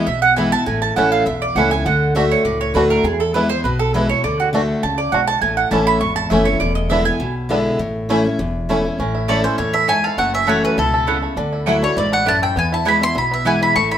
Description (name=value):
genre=bluegrass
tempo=202 BPM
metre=4/4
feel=straight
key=A major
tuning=A4 = 440 Hz
part: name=picked steel-string acoustic guitar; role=accompaniment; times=0.0-14.0 s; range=E2 to F#4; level=-19 LUFS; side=left 1 dB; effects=none
part: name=mandolin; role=stabs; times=0.0-13.6 s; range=A3 to C#6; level=-19 LUFS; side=right 5 dB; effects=none
part: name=upright bass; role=bass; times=0.1-14.0 s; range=E1 to E2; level=-25 LUFS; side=equal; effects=none
part: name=bluegrass banjo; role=arpeggios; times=0.4-14.0 s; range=A3 to A4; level=-24 LUFS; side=right 2 dB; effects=none
part: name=mandolin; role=melody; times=9.3-14.0 s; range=A4 to C#6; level=-17 LUFS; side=equal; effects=none
room=moderate stone room reverb, RT60 1.2 s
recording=band playing live in one room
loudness=-15 LUFS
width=side -10 dB against mid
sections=0.0-9.0 A section; 9.0-14.0 B section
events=mandolin solo 0.0-9.0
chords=0.0 E; 0.7 A; 1.9 D; 3.0 E; 4.2 D; 5.4 A; 6.6 E7; 7.8 A; 10.2 F#m7; 11.4 Dadd9; 12.6 E